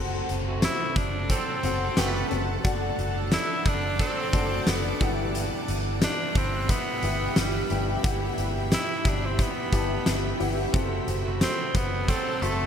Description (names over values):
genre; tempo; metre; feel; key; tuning
1980s-style pop; 89 BPM; 4/4; straight; E minor; A4 = 440 Hz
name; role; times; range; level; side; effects
overdriven electric guitar; accompaniment; 0.0-12.7 s; E2 to D4; -37 LUFS; right 1 dB; none
warm baby grand piano; accompaniment; 0.0-12.7 s; G2 to A5; -33 LUFS; left 4 dB; analog chorus
shimmering ambient pad; sustained chords; 0.9-12.7 s; G4 to D6; -35 LUFS; right 1 dB; chorus, built-in reverb
vintage muted fingered electric bass; bass; 0.0-12.7 s; F#1 to G1; -30 LUFS; equal; none
huge arena drum kit; drums; 0.3-12.6 s; hi-hat, kick drum, snare drum, tambourine; -28 LUFS; equal; none
warm horn section; stabs; 0.5-4.3, 11.2-12.4 s; C3 to B4; -35 LUFS; right 5 dB; digital delay
raspy tenor saxophone; melody; 0.6-12.7 s; G3 to E4; -30 LUFS; equal; none
room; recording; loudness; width
moderate lush hall reverb, RT60 1.6 s, small room ambience; bright 1980s-style digital production; -23 LUFS; side -8 dB against mid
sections
0.0-12.7 A section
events
none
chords
0.0 F#dim; 2.6 D/F#; 5.0 Emadd9/G; 10.7 F#dim